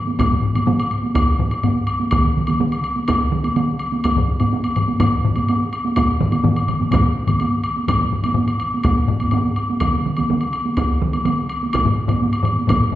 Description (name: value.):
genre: japanese traditional, taiko drum ensemble.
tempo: 125 BPM.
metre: 4/4.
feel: straight.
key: none.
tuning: none.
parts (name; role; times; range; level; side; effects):
solo taiko drums; percussion; 0.1-12.8 s; none; -22 LUFS; right 2 dB; none.
taiko ensemble; percussion; 0.2-13.0 s; none; -21 LUFS; left 2 dB; none.
taiko ensemble; percussion; 0.2-12.8 s; none; -22 LUFS; equal; none.
woodblock; percussion; 0.2-12.8 s; none; -24 LUFS; left 2 dB; none.
solo taiko drums; percussion; 2.1-11.4 s; none; -24 LUFS; right 2 dB; none.
room: wet recital hall reverb, RT60 1.5 s.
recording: heard from further back in the room.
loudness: -16 LUFS.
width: side -14 dB against mid.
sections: 0.2-13.0 A section.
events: none.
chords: none.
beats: | 0.19 0.68 1.16 1.64 | 2.12 2.60 3.08 3.56 | 4.04 4.52 5.00 5.49 | 5.97 6.45 6.93 7.41 | 7.89 8.37 8.85 9.33 | 9.81 10.29 10.77 11.25 | 11.73 12.21 12.69.